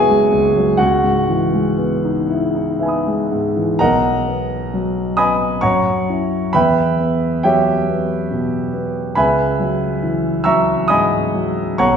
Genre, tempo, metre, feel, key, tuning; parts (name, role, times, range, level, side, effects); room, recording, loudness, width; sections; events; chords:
classical, impressionist solo piano; 58-71 BPM; 3/4; rubato; A4 = 440 Hz
warm concert grand piano; solo; 0.0-12.0 s; F#1 to E6; -14 LUFS; equal
wet scoring stage reverb, RT60 1.6 s; heard from further back in the room; -15 LUFS; side -7 dB against mid
0.0-3.8 A section; 3.8-12.0 B section
0.0 F#11; 0.8 C#m11; 3.8 Bmaj7; 5.6 F#5; 6.6 Emadd9; 9.2 C#m11